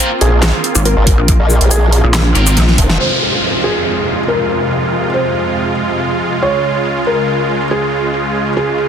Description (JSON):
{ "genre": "heavy wobble dubstep", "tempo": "140 BPM", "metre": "4/4", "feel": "half-time", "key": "F minor", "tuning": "A4 = 440 Hz", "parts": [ { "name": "felt-muted upright piano", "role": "melody", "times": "0.0-8.9 s", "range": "Ab4 to Db5", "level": "-18 LUFS", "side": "equal", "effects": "tape echo" }, { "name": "supersaw chords", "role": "sustained chords", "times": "0.0-8.9 s", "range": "Db2 to F4", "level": "-17 LUFS", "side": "right 1 dB", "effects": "sidechain pumping, low-pass filter" }, { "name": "tight distorted guitar", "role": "stabs", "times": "0.0-2.5 s", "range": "C4 to Bb4", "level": "-20 LUFS", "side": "left 1 dB", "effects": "distortion, tape echo" }, { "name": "dubstep drum kit", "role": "drums", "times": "0.0-8.9 s", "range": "handclaps, hi-hat, shaker, snare drum", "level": "-17 LUFS", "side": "equal", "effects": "overdrive, low-pass filter on hats, low-pass filter on perc, low-pass filter on snare, low-pass filter on room" }, { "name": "formant-sweep wobble bass", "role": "bass", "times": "0.2-3.0 s", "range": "F1 to Bb1", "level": "-12 LUFS", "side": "equal", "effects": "chorus, overdrive" }, { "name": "pulsing pluck wobble bass", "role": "bass", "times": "0.8-2.8 s", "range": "Ab1 to Bb1", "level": "-12 LUFS", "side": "equal", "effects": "chorus, overdrive" }, { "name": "electronic kick drum", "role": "drums", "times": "1.1-2.9 s", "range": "none", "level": "-13 LUFS", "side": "equal", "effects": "overdrive" }, { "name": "downlifter", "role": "sound effects", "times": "3.0-6.4 s", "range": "none", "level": "-19 LUFS", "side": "left 1 dB", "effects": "none" } ], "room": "light reverb, digital ambience", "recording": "dense, heavily limited modern master", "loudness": "-11 LUFS", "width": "side -8 dB against mid", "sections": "0.0-3.0 A section; 3.0-8.9 B section", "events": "drop 0.0-3.0; drum fill 2.6-3.0; band accent 2.9", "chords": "0.0 Bbsus2; 3.0 Fm; 6.4 Db" }